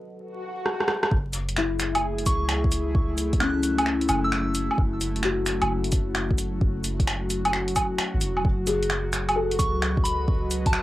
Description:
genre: future garage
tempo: 131 BPM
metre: 4/4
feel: swing 67% on 16ths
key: F# dorian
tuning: A4 = 440 Hz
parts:
  - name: felt-muted upright piano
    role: accompaniment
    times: 0.0-10.8 s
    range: C#4 to A4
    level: -30 LUFS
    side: left 4 dB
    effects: sidechain pumping, cassette tape, analog delay
  - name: airy breathy pad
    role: sustained chords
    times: 0.0-10.8 s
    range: F#3 to F#5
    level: -31 LUFS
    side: equal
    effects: chorus, sidechain pumping, cassette tape
  - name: swell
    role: sound effects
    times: 0.3-1.1 s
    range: none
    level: -33 LUFS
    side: equal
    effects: none
  - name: deep house drum kit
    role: drums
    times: 0.7-10.8 s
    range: cabasa, finger snaps, hi-hat, rim click, woodblock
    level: -26 LUFS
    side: right 1 dB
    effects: cassette tape
  - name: soft 808-style bass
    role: bass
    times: 1.1-10.8 s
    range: E1 to C#2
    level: -30 LUFS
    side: equal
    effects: sidechain pumping
  - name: electronic kick drum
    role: drums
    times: 1.1-10.7 s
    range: none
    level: -24 LUFS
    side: equal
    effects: cassette tape
  - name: soft synth bell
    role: melody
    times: 2.3-4.6, 9.6-10.8 s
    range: A5 to F#6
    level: -31 LUFS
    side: equal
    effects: chorus, cassette tape, tape echo
room: light reverb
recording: home recording on cassette, vinyl crackle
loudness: -22 LUFS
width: side -16 dB against mid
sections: 0.0-1.1 A section; 1.1-10.8 B section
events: filter sweep on analog synth pad 0.0-1.1; filter sweep 0.0-1.1; swell 0.3-1.1; drum fill 0.7-1.1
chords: 0.0 B/F#; 1.1 F#m7; 8.4 B/F#

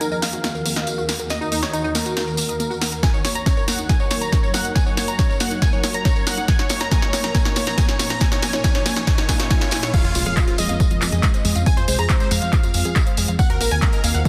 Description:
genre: uplifting trance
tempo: 139 BPM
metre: 4/4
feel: straight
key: unclear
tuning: A4 = 440 Hz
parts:
  - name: supersaw stab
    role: melody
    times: 0.0-14.3 s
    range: Eb4 to Bb5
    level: -28 LUFS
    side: equal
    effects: sidechain pumping, low-pass filter, digital delay
  - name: shimmering ambient pad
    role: sustained chords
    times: 0.0-14.3 s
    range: Eb2 to Bb4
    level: -32 LUFS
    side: equal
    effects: chorus, built-in reverb, phaser, sidechain pumping
  - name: unison pluck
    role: arpeggios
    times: 0.0-14.3 s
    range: Ab3 to Gb5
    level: -31 LUFS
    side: equal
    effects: sidechain pumping, digital delay
  - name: punchy analog drum machine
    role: drums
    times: 0.0-14.3 s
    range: crash cymbal, handclaps, hi-hat, snare drum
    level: -28 LUFS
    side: equal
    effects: high-pass filter on snare, high-pass filter on hats, high-pass filter on cymbals
  - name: tambourine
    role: percussion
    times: 0.0-14.3 s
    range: none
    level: -32 LUFS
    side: equal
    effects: none
  - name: electronic kick drum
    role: drums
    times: 3.0-14.3 s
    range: none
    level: -21 LUFS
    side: equal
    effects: none
  - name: riser, swell and impact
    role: sound effects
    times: 7.1-11.7 s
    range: none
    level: -37 LUFS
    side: equal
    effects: none
  - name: unison pluck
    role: second line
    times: 9.9-14.3 s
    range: F4 to Bb5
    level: -34 LUFS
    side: equal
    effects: sidechain pumping, digital delay
  - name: plucky analog bass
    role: bass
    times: 10.0-14.2 s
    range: Bb1 to F2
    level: -24 LUFS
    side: equal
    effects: sidechain pumping
room: moderate lush hall reverb, RT60 1.8 s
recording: dense, heavily limited modern master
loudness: -20 LUFS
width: mono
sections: 0.0-9.9 A section; 9.9-14.3 B section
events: build-up 0.0-9.9; drum fill 0.0-9.9; filter sweep on supersaw synth 0.0-9.9; swell 9.1-9.9; drop 9.9-14.3; impact 9.9-11.7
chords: 0.0 Ebm; 3.0 Gb6; 6.5 Bbm; 9.9 Fm; 13.4 Ebm

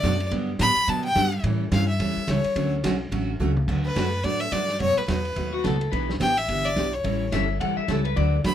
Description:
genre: country, western swing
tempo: 214 BPM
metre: 4/4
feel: swing 59% on 8ths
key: D major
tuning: A4 = 440 Hz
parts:
  - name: clear fiddle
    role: melody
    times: 0.0-8.5 s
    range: B4 to B5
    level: -25 LUFS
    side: left 1 dB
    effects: none
  - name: picked steel-string acoustic guitar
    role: accompaniment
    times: 0.0-8.5 s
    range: B2 to B4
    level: -28 LUFS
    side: right 3 dB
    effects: none
  - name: upright bass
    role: bass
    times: 0.0-8.5 s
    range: G1 to B2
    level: -26 LUFS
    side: equal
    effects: none
  - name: vintage drum kit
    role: drums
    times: 0.0-8.5 s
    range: crash cymbal, hi-hat, kick drum, ride cymbal, snare drum, toms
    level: -32 LUFS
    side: equal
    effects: none
  - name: clean lap steel guitar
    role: second line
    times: 5.5-8.4 s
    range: F#4 to F#5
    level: -28 LUFS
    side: left 6 dB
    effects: none
room: moderate club reverb, RT60 0.5 s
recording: none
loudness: -21 LUFS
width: side -10 dB against mid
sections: 0.0-3.7 A section; 3.7-8.5 B section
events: fiddle solo 0.0-3.7; drum fill 3.4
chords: 0.3 Gmaj7; 1.4 A7; 2.6 Dmaj7; 3.7 D6; 4.8 B7; 5.9 Em7; 7.0 A7

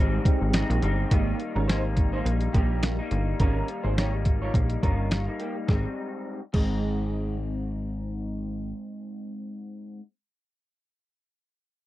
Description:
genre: indie pop, bedroom pop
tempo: 105 BPM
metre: 4/4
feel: swing 55% on 16ths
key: Ab major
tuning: A4 = 442 Hz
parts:
  - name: electric guitar through a small old amp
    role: accompaniment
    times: 0.0-10.0 s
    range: Ab2 to Eb4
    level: -32 LUFS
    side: left 3 dB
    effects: analog chorus, warbly pitch drift, low-pass filter
  - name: mellow tine electric piano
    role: accompaniment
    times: 0.0-1.1 s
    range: Ab3 to G5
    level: -33 LUFS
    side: right 3 dB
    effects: medium stereo tremolo, cassette tape
  - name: plucky analog bass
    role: bass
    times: 0.0-8.7 s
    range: G1 to Bb1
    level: -27 LUFS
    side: equal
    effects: none
  - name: lo-fi sampler-style drum kit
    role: drums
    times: 0.3-6.7 s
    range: crash cymbal, hi-hat, kick drum, snare drum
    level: -24 LUFS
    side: equal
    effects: none
  - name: electric guitar through a small old amp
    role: second line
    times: 1.1-7.4 s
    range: Ab3 to Db5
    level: -33 LUFS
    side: right 3 dB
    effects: ensemble chorus, slapback echo
room: little or no reverb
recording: dry, close 1970s-style studio recording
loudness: -24 LUFS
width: side -16 dB against mid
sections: 0.0-1.1 A section; 1.1-5.7 B section; 5.7-8.0 C section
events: none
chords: 0.0 Abmaj7; 1.1 Eb; 5.7 Abmaj7

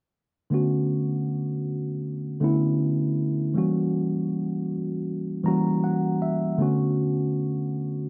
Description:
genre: R&B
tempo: 79 BPM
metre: 4/4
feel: swing 54% on 16ths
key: B minor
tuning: A4 = 439 Hz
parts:
  - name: mellow tine electric piano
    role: accompaniment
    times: 0.5-8.1 s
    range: D3 to A#5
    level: -26 LUFS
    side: equal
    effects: subtle chorus
room: moderate spring reverb, RT60 1.3 s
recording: none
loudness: -26 LUFS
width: mono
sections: 0.5-8.1 A section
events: tine electric piano fill 5.1-6.6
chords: 0.5 Bm9; 3.6 F#7b9; 6.6 Bm9

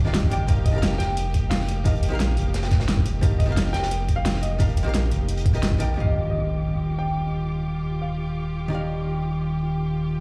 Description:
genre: liquid drum and bass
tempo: 175 BPM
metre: 4/4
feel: straight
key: Eb major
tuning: A4 = 441 Hz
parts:
  - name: dark grand piano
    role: melody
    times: 0.0-8.5 s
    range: Eb5 to A5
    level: -36 LUFS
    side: equal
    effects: dub echo
  - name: archtop guitar, miked and amplified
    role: accompaniment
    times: 0.0-10.2 s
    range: Eb3 to G5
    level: -30 LUFS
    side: equal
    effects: none
  - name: rich studio string section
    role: sustained chords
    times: 0.0-10.2 s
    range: Bb3 to D6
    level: -37 LUFS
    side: equal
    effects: sidechain pumping
  - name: saturated sub bass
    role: bass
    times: 0.0-10.2 s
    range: Eb1 to Bb1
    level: -28 LUFS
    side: equal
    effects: none
  - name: crunchy breakbeat drum kit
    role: drums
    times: 0.1-5.9 s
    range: hi-hat, snare drum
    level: -39 LUFS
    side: equal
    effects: high-pass filter on hats, high-pass filter on snare, high-pass filter on room
  - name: pop drum kit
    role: drums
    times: 0.1-5.9 s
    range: hi-hat, snare drum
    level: -29 LUFS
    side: equal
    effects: overdrive
  - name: electronic kick drum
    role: drums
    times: 0.2-5.8 s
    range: none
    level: -24 LUFS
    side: equal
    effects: none
  - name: impact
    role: sound effects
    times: 6.0-7.3 s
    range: none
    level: -30 LUFS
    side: equal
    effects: none
room: studio ambience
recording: played on a big sound system in a bare room, large studio reverb, small room ambience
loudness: -23 LUFS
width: mono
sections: 0.0-6.0 A section; 6.0-10.2 B section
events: drop 0.0-6.0; impact 6.0-7.3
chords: 0.5 F9sus4; 6.0 Ebmaj9

